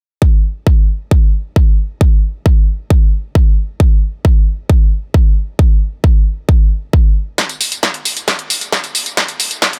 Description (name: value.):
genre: trance.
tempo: 134 BPM.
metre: 4/4.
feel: straight.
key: none.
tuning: none.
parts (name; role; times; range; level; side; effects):
electronic kick drum; drums; 0.2-9.7 s; none; -12 LUFS; equal; high-pass filter on kick.
punchy analog drum machine; drums; 7.4-9.8 s; hi-hat, snare drum, tambourine; -17 LUFS; equal; high-pass filter on snare, high-pass filter on hats, high-pass filter on perc.
room: digital ambience.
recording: none.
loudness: -14 LUFS.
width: mono.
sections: 0.2-7.4 A section; 7.4-9.8 B section.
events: build-up 7.4-9.8; drum fill 7.4-9.8.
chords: none.